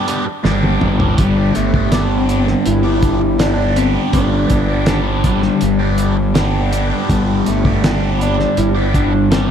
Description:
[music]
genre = psychedelic rock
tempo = 81 BPM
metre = 4/4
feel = straight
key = G major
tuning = A4 = 440 Hz
[part]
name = cranked stack guitar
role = riff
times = 0.0-9.5 s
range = G2 to G4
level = -18 LUFS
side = right 1 dB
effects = overdrive, phaser
[part]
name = cloth-damped thuddy drum kit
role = drums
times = 0.1-9.5 s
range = hi-hat, kick drum, snare drum, toms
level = -19 LUFS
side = equal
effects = none
[part]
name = fuzz fingered electric bass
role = bass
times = 0.4-9.5 s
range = G1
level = -18 LUFS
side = equal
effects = overdrive
[part]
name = electric slide guitar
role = melody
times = 1.2-9.4 s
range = G3 to E4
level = -19 LUFS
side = left 2 dB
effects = diffuse ambient delay
[sound]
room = moderate lush hall reverb, RT60 2.8 s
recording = dreamy mix soaked in reverb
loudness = -13 LUFS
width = side -8 dB against mid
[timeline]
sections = 0.0-1.2 A section; 1.2-9.5 B section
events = drum fill 0.5-1.2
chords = 0.0 G

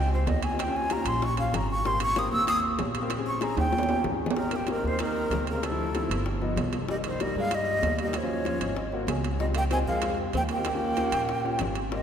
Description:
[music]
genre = Afro-Cuban jazz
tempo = 191 BPM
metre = 4/4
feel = straight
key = Ab major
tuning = A4 = 438 Hz
[part]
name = breathy jazz flute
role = melody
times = 0.0-12.0 s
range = G4 to Fb6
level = -29 LUFS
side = equal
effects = none
[part]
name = warm baby grand piano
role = accompaniment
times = 0.0-12.0 s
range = F3 to Ab5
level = -33 LUFS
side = left 3 dB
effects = none
[part]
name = upright bass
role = bass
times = 0.0-12.0 s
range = G1 to G2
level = -30 LUFS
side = right 1 dB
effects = none
[part]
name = bongos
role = percussion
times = 0.1-12.0 s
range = none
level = -36 LUFS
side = left 3 dB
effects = none
[part]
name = timbales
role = percussion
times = 0.3-11.9 s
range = none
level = -35 LUFS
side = right 4 dB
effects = none
[part]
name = breathy tenor saxophone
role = second line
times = 4.4-12.0 s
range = Bb2 to C4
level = -34 LUFS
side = right 2 dB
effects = none
[sound]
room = wet cathedral reverb, RT60 4.3 s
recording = recorded in a church or concert hall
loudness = -25 LUFS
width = side -8 dB against mid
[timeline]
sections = 0.0-4.4 A section; 4.4-12.0 B section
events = flute solo 0.0-4.4; drum fill 3.6-4.4; grand piano fill 8.5-9.4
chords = 0.0 Dbmaj9#11; 0.6 Eb7; 1.8 Abmaj9; 3.1 Bbm7; 3.7 Eb9; 4.4 Abmaj9; 5.6 Dm7; 6.3 G7b13; 6.9 Cm7; 8.1 Ebm9; 8.8 Ab9; 9.4 Dbmaj9#11; 10.7 Eb7

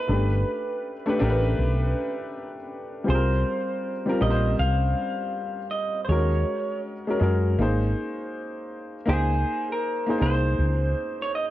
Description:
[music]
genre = lo-fi hip hop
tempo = 80 BPM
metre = 4/4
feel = swing 65% on 16ths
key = unclear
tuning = A4 = 442 Hz
[part]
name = electric guitar through a small old amp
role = melody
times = 0.0-11.4 s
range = Ab4 to F5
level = -29 LUFS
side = right 1 dB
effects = low-pass filter, plate reverb, tape echo
[part]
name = dark upright piano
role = accompaniment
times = 0.0-11.5 s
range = G3 to C5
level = -27 LUFS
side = left 1 dB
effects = low-pass filter, plate reverb
[part]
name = woody fretless electric bass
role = bass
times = 0.1-10.9 s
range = G1 to Gb2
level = -23 LUFS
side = equal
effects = none
[sound]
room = light reverb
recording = worn, warbling old tape, cassette tape, warbly pitch drift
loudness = -22 LUFS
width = side -14 dB against mid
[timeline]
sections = 0.0-11.5 A section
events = none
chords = 0.1 G; 3.1 C5; 6.1 Ebm7; 7.6 Abadd9; 9.1 Dbsus2

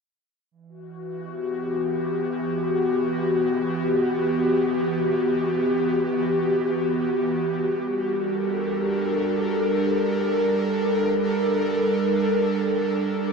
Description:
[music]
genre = ambient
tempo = free time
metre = none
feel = none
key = unclear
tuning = A4 = 443 Hz
[part]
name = airy breathy pad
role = solo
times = 0.5-13.3 s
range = E3 to Bb4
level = -21 LUFS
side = equal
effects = chorus, ping-pong delay
[sound]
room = wet huge ambient reverb, RT60 8.2 s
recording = worn, warbling old tape, cassette tape, warbly pitch drift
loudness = -21 LUFS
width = side -5 dB against mid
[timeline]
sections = 0.5-13.3 A section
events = none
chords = 0.5 Em; 7.6 Gm

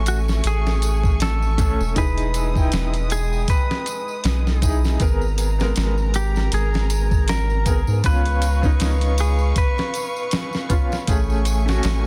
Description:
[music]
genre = trip hop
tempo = 79 BPM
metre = 4/4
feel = swing 56% on 16ths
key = G# harmonic minor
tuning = A4 = 439 Hz
[part]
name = felt-muted upright piano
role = accompaniment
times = 0.0-12.1 s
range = G#3 to G5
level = -31 LUFS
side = equal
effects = tremolo
[part]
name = warm studio violin section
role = sustained chords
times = 0.0-12.1 s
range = G#3 to D#6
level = -35 LUFS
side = equal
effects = vintage 12-bit sampler grit
[part]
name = soft dub sub bass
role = bass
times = 0.0-12.1 s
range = E1 to G#2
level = -23 LUFS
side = equal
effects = none
[part]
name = clean lap steel guitar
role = melody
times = 0.1-10.7 s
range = F#4 to B4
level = -31 LUFS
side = equal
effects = vintage 12-bit sampler grit, tape echo
[part]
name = dusty soul sampler-style drum kit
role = drums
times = 0.1-12.0 s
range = hi-hat, kick drum, snare drum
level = -24 LUFS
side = equal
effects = none
[part]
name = tambourine and triangle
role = percussion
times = 0.1-12.0 s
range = none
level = -39 LUFS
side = equal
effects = none
[sound]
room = small room ambience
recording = dense, heavily limited modern master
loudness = -20 LUFS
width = mono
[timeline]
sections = 0.0-12.1 A section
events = none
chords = 0.0 Amaj7; 2.0 Emaj7; 5.0 G#madd9; 8.0 C#7; 11.1 Amaj7

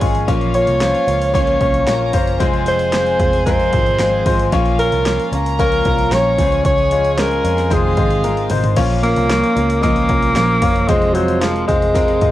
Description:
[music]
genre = piano-driven pop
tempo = 113 BPM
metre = 4/4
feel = straight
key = Bb minor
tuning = A4 = 440 Hz
[part]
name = warm studio violin section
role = second line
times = 0.0-8.7 s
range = F4 to Bb5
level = -26 LUFS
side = right 1 dB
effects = cassette tape, plate reverb
[part]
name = clear baby grand piano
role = accompaniment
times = 0.0-12.3 s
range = Bb2 to Eb5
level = -21 LUFS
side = left 7 dB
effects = cassette tape, plate reverb
[part]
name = picked steel-string acoustic guitar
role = riff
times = 0.0-12.3 s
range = F2 to F4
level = -23 LUFS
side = right 6 dB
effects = cassette tape
[part]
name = vintage muted picked electric bass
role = bass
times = 0.0-12.3 s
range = F1 to F2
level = -21 LUFS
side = equal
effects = none
[part]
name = deep house drum kit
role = drums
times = 0.0-12.3 s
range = crash cymbal, hi-hat, kick drum, snare drum, toms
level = -20 LUFS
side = equal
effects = cassette tape
[part]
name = breathy alto saxophone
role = melody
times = 0.5-12.3 s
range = F3 to Db5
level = -17 LUFS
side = equal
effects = cassette tape, plate reverb
[sound]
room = moderate small room reverb, RT60 0.5 s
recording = home recording on cassette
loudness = -13 LUFS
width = side -14 dB against mid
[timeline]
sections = 0.0-8.8 A section; 8.8-12.3 A section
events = drum fill 8.2-8.8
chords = 0.3 Bbm; 2.4 Fm; 4.5 Bbm; 6.4 Db; 7.7 Fm7; 8.8 Bbm; 10.9 Fm

